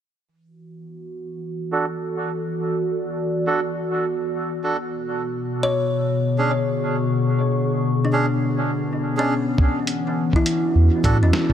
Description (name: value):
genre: ambient dub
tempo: 103 BPM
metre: 4/4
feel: swing 57% on 16ths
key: unclear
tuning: A4 = 441 Hz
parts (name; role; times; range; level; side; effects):
- warbly tape-like pad; sustained chords; 0.7-11.5 s; B2 to D6; -23 LUFS; left 1 dB; chorus, built-in reverb, vintage 12-bit sampler grit
- melodica; stabs; 1.7-11.2 s; C#4 to A4; -27 LUFS; right 4 dB; low-pass filter, dub echo
- kalimba; arpeggios; 5.6-11.5 s; C#4 to C#5; -24 LUFS; left 1 dB; dub echo
- electronic kick drum; drums; 9.6-11.5 s; none; -18 LUFS; equal; none
- lo-fi sampler-style drum kit; drums; 9.9-11.5 s; hi-hat, snare drum; -26 LUFS; right 1 dB; low-pass filter on hats, low-pass filter on snare, low-pass filter on room
- soft dub sub bass; bass; 10.8-11.3 s; E2 to A2; -15 LUFS; equal; none
room: light reverb, digital ambience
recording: none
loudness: -19 LUFS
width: side -9 dB against mid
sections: 0.3-9.6 A section; 9.6-11.5 B section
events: filter sweep on melodica 0.3-9.6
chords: 0.3 E9sus4; 4.9 Bm69; 9.6 E9sus4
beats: | 0.27 0.85 1.43 2.01 | 2.60 3.18 3.76 4.34 | 4.93 5.51 6.09 6.67 | 7.26 7.84 8.42 9.00 | 9.59 10.17 10.75 11.33